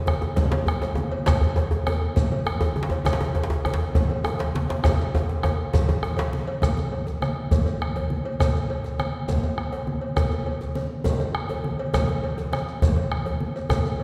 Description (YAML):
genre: west african traditional, West African drum ensemble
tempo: 135 BPM (dotted quarters)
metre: 12/8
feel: straight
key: none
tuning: none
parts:
  - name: bombo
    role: percussion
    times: 0.1-14.0 s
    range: none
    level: -29 LUFS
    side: equal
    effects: none
  - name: congas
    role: percussion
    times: 0.1-14.0 s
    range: none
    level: -31 LUFS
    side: equal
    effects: none
  - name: cowbell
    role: percussion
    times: 0.1-14.0 s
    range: none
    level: -34 LUFS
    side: equal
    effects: none
  - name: djembe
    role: percussion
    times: 0.1-13.9 s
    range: none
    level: -33 LUFS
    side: equal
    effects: none
  - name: djembe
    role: percussion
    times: 0.1-6.3 s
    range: none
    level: -29 LUFS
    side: equal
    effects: none
  - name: shekere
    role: percussion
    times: 0.4-13.9 s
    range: none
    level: -38 LUFS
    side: equal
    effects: none
room: wet concert hall reverb, RT60 2.1 s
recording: heard from further back in the room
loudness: -24 LUFS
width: mono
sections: 0.0-6.6 A section; 6.6-14.0 B section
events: drum fill 4.8-6.6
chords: none